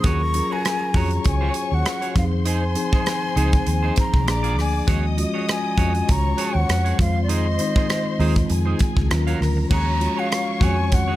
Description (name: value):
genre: lush 1970s-style soul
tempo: 99 BPM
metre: 4/4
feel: swing 54% on 16ths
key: Eb dorian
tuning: A4 = 440 Hz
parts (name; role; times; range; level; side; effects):
- breathy mellow silver concert flute; melody; 0.0-11.2 s; D5 to Eb6; -26 LUFS; left 2 dB; none
- warm symphonic string section; second line; 0.0-11.2 s; Ab4 to Eb6; -31 LUFS; left 3 dB; none
- mellow tine electric piano; accompaniment; 0.0-11.2 s; Eb3 to Ab4; -26 LUFS; left 2 dB; medium stereo tremolo
- clean electric guitar; riff; 0.0-11.2 s; Eb4 to F5; -32 LUFS; right 6 dB; none
- vintage muted fingered electric bass; bass; 0.0-11.2 s; Bb1 to F2; -21 LUFS; equal; none
- modern studio drum kit; drums; 0.0-11.1 s; crash cymbal, hi-hat, kick drum, rim click; -23 LUFS; equal; none
room: studio ambience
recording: none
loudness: -18 LUFS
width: side -15 dB against mid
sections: 0.0-9.7 A section; 9.7-11.2 A section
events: none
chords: 0.0 Ebm11; 2.2 Fm7; 4.3 Bb7; 4.9 Ebm11; 7.0 Fm7; 9.1 Ebm9; 9.7 Ebm11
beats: | 0.04 0.65 1.25 1.86 | 2.46 3.06 3.67 4.27 | 4.88 5.48 6.08 6.69 | 7.29 7.90 8.50 9.10 | 9.71 10.31 10.92